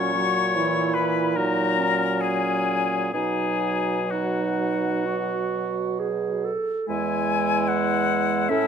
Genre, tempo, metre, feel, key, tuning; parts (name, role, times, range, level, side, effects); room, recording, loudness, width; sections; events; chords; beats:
classical, slow romantic movement for wind quintet; 61-76 BPM; 4/4; rubato; E major; A4 = 440 Hz
concert flute; melody; 0.0-8.7 s; E5 to C#6; -26 LUFS; left 9 dB
warm oboe; second line; 0.0-8.7 s; E4 to C#5; -29 LUFS; left 4 dB
clear French horn; accompaniment; 0.0-8.7 s; E3 to A4; -29 LUFS; equal
mellow clarinet; accompaniment; 0.0-8.7 s; G#3 to A4; -28 LUFS; right 9 dB
warm bassoon; bass; 0.0-8.7 s; E2 to B2; -28 LUFS; right 2 dB
moderate recital hall reverb, RT60 1.5 s; close, detailed microphones; -21 LUFS; side -7 dB against mid
0.0-6.9 A section; 6.9-8.7 B section
0.0 F#7/A#; 3.1 B; 6.9 E
0.56 1.36 2.22 | 3.14 4.10 5.06 5.99 | 6.88 7.69 8.50